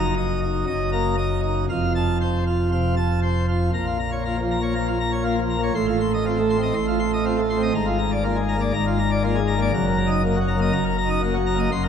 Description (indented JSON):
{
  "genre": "classical, organ toccata",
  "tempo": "120 BPM",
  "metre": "4/4",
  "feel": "straight",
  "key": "unclear",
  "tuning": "A4 = 438 Hz",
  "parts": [
    { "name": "pipe organ, plenum", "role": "solo", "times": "0.0-11.9 s", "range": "F1 to C6", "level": "-20 LUFS", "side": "equal", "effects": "none" }
  ],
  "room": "wet church reverb, RT60 2.6 s",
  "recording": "none",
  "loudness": "-20 LUFS",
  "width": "side -7 dB against mid",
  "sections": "0.0-3.7 A section; 3.7-11.9 B section",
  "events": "none",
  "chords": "0.0 Ebm/Gb; 1.7 F; 3.7 Bbm; 5.7 F7/A; 7.7 Bb7/Ab; 9.7 Ebm/Gb"
}